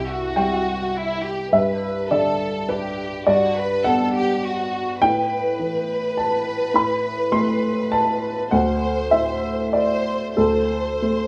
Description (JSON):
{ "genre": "neoclassical piano and strings", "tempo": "92-106 BPM", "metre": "3/4", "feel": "rubato", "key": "G major", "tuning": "A4 = 440 Hz", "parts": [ { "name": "rich studio violin section", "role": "melody", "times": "0.0-11.3 s", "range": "E4 to C5", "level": "-26 LUFS", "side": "equal", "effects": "none" }, { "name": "dark upright piano", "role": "accompaniment", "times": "0.0-11.3 s", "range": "C2 to C6", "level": "-23 LUFS", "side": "equal", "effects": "none" } ], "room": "moderate large studio reverb, RT60 1.1 s", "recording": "small room ambience", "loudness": "-21 LUFS", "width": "mono", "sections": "0.0-11.3 A section", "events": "none", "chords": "0.0 C; 1.5 Gmaj7; 5.0 Amadd9; 8.5 D7", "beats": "0.36 0.95 | 1.53 2.11 2.69 | 3.27 3.85 4.43 | 5.02 5.59 6.16 | 6.74 7.32 7.92 | 8.52 9.12 9.74 | 10.37 11.02" }